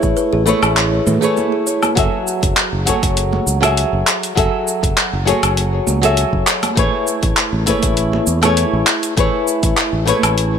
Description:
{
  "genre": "sunset chillout",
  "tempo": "100 BPM",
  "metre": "4/4",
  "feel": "straight",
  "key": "F# minor",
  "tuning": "A4 = 440 Hz",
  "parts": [
    { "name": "flamenco guitar", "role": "accompaniment", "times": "0.0-10.6 s", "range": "F#3 to E5", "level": "-17 LUFS", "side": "left 1 dB", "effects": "auto-pan, low-pass filter, ping-pong delay" },
    { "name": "fingered electric bass", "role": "bass", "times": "0.0-10.6 s", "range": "F#1 to A2", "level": "-19 LUFS", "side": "equal", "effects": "none" },
    { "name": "deep house drum kit", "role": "drums", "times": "0.0-10.5 s", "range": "cabasa, handclaps, hi-hat, woodblock", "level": "-18 LUFS", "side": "equal", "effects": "none" },
    { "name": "electronic kick drum", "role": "drums", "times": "0.0-9.7 s", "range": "none", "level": "-20 LUFS", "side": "equal", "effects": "none" },
    { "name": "kalimba", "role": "arpeggios", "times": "0.2-1.8 s", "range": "G#4 to C#5", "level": "-23 LUFS", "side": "right 2 dB", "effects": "low-pass filter, ping-pong delay" },
    { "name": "congas", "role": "percussion", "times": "0.5-10.2 s", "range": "none", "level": "-26 LUFS", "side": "right 5 dB", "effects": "none" }
  ],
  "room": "light reverb, digital ambience",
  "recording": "none",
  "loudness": "-13 LUFS",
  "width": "side -7 dB against mid",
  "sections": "0.0-2.0 A section; 2.0-10.6 A section",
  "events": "break 1.4-2.0",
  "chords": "0.0 Amaj9; 2.0 F#m9; 6.8 Amaj9",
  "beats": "0.17 0.77 1.37 | 1.97 2.57 3.17 3.77 | 4.37 4.97 5.57 6.17 | 6.77 7.37 7.97 8.57 | 9.17 9.77 10.37"
}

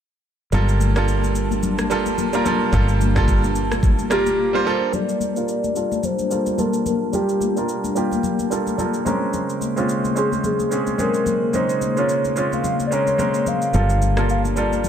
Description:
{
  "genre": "amapiano",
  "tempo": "109 BPM",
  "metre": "4/4",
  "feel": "swing 58% on 16ths",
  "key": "unclear",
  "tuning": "A4 = 441 Hz",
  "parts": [
    { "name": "bright baby grand piano", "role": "accompaniment", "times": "0.5-14.9 s", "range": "G3 to C5", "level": "-23 LUFS", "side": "right 4 dB", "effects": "low-pass filter" },
    { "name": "hollow soft pad", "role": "sustained chords", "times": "0.5-14.9 s", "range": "Db3 to A5", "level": "-26 LUFS", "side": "left 2 dB", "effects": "chorus, sidechain pumping, low-pass filter" },
    { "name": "fingered electric bass", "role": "bass", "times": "0.5-4.6, 13.7-14.9 s", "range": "G1", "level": "-21 LUFS", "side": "equal", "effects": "none" },
    { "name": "smooth R&B drum kit", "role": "drums", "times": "0.5-14.9 s", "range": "kick drum, rim click, shaker", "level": "-26 LUFS", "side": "equal", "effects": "none" },
    { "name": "congas", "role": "percussion", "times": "0.5-14.9 s", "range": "none", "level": "-28 LUFS", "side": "left 8 dB", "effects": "none" },
    { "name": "hollow clarinet-like synth lead", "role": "melody", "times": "4.1-14.9 s", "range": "G4 to F5", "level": "-23 LUFS", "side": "left 1 dB", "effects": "chorus, low-pass filter, ping-pong delay" }
  ],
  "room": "light reverb, digital ambience",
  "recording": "none",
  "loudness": "-18 LUFS",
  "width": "side -9 dB against mid",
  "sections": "0.5-4.9 A section; 4.9-14.9 B section",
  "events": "silent gap 4.4-4.9; filter sweep 4.9-14.9",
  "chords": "0.5 Gm9; 9.1 Bbm9; 13.7 Gm9",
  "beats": "| 0.53 1.08 1.63 2.18 | 2.73 3.28 3.83 4.38 | 4.93 5.48 6.03 6.58 | 7.13 7.68 8.23 8.78 | 9.34 9.88 10.44 10.99 | 11.54 12.09 12.64 13.19 | 13.74 14.29 14.84"
}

